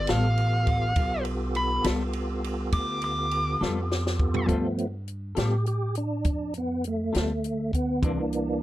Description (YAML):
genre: slow blues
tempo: 68 BPM (dotted quarters)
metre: 12/8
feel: straight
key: G mixolydian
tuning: A4 = 444 Hz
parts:
  - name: dark smooth lead guitar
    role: melody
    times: 0.0-4.5 s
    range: D5 to D6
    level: -28 LUFS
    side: equal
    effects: overdrive
  - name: tonewheel organ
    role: sustained chords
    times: 0.0-8.6 s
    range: E3 to A4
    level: -30 LUFS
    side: right 1 dB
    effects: slow rotary speaker, overdrive, chorus vibrato
  - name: upright bass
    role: bass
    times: 0.0-8.6 s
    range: A1 to A2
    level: -29 LUFS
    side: equal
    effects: none
  - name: semi-hollow electric guitar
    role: accompaniment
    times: 0.1-8.2 s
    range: C3 to A4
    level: -30 LUFS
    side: left 4 dB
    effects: harmonic tremolo
  - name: compact cocktail drum kit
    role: drums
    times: 0.1-8.5 s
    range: hi-hat, kick drum, ride cymbal, snare drum, toms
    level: -30 LUFS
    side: equal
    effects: none
room: light reverb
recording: dark, warm production, faint mains hum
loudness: -24 LUFS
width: side -15 dB against mid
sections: 0.0-4.5 A section; 4.5-8.6 A section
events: lead electric guitar solo 0.0-4.5; drum fill 3.6-4.5; tonewheel organ solo 4.5-8.6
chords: 0.0 G9; 8.0 C9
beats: 0.07 | 0.96 1.84 2.72 3.60 | 4.49 5.37 6.25 7.14 | 8.02